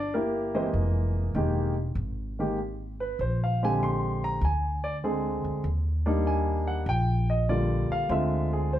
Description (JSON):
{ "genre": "jazz", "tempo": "98 BPM", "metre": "4/4", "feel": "swing 68% on 8ths", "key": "unclear", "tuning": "A4 = 440 Hz", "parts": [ { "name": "warm grand piano", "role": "melody", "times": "0.0-8.8 s", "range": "D3 to C6", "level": "-27 LUFS", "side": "equal", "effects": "none" }, { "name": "upright bass", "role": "bass", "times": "0.0-8.8 s", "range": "E1 to Eb2", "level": "-28 LUFS", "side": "equal", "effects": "none" } ], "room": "wet club reverb, RT60 0.9 s", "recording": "heard from further back in the room", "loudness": "-25 LUFS", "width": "side -12 dB against mid", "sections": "0.0-8.8 A section", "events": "none", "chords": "0.0 C7; 0.7 Fm11; 3.2 Bb13; 5.6 Ebmaj7; 8.1 Dm7b5", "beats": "0.13 | 0.74 1.36 1.97 2.58 | 3.19 3.81 4.42 5.03 | 5.64 6.26 6.87 7.48 | 8.09 8.71" }